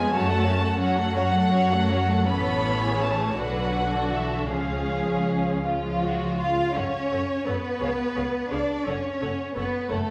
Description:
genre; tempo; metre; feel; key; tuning
classical, slow romantic movement for string orchestra; 52-60 BPM (dotted quarters); 6/8; rubato; F# minor; A4 = 440 Hz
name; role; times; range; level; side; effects
dark studio violin section; melody; 0.0-10.0 s; E5 to B5; -32 LUFS; equal; none
warm studio violin section; second line; 0.0-10.1 s; C#4 to F#5; -31 LUFS; equal; none
rich studio viola section; accompaniment; 0.0-10.0 s; D3 to C#5; -33 LUFS; equal; none
rich studio cello section; bass; 0.0-10.1 s; E3 to E#4; -31 LUFS; equal; none
rich studio double bass section; bass; 0.1-10.0 s; F#1 to F#2; -32 LUFS; equal; none
room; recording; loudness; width
wet scoring stage reverb, RT60 1.8 s; none; -25 LUFS; mono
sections
0.0-6.8 A section; 6.8-10.1 B section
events
none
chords
0.1 F#m; 2.3 A; 3.4 Bm; 4.5 C#; 6.8 F#m; 7.8 C#7; 8.9 F#m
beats
| 0.13 1.17 | 2.29 3.38 | 4.50 5.65 | 6.76 7.81 | 8.86 9.90

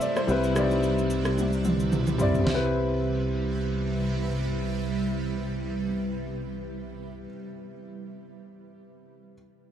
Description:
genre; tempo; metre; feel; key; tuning
amapiano; 110 BPM; 4/4; swing 55% on 16ths; C major; A4 = 440 Hz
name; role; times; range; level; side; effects
warm grand piano; accompaniment; 0.0-9.4 s; G3 to E5; -28 LUFS; left 2 dB; plate reverb
granular cloud pad; sustained chords; 0.0-7.3 s; C3 to B4; -32 LUFS; right 2 dB; built-in reverb, plate reverb
deep house drum kit; drums; 0.0-2.6 s; rim click, shaker, snare drum, toms; -28 LUFS; right 1 dB; overdrive
fingered electric bass; bass; 0.3-7.3 s; C2; -30 LUFS; right 1 dB; none
room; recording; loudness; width
moderate studio reverb, RT60 0.6 s; dark, warm production; -24 LUFS; side -9 dB against mid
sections
0.0-2.5 A section; 2.5-6.8 B section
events
drum fill 1.4-2.5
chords
0.3 Cmaj7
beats
| 0.28 0.83 1.38 1.92 | 2.47 3.01 3.56 4.10 | 4.65 5.19 5.74 6.28

